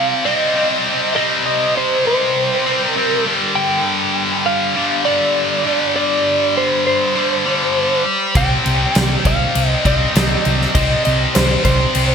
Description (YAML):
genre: hard rock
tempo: 100 BPM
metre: 4/4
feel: straight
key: C minor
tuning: A4 = 436 Hz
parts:
  - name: lightly driven lead guitar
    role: melody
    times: 0.0-12.1 s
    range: C5 to G5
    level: -19 LUFS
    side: equal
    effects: analog chorus
  - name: heavy high-gain guitar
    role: riff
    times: 0.0-12.1 s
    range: G2 to C4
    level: -17 LUFS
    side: left 1 dB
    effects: distortion
  - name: hollow-body short-scale picked electric bass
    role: bass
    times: 8.4-12.1 s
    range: C2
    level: -19 LUFS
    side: equal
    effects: none
  - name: huge arena drum kit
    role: drums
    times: 8.4-12.1 s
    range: crash cymbal, kick drum, snare drum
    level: -18 LUFS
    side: equal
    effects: gated reverb
room: moderate plate reverb, RT60 3.2 s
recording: bright 1980s-style digital production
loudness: -14 LUFS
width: side -6 dB against mid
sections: 0.0-12.1 A section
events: none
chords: 0.0 Cm; 3.3 G5; 8.4 Cm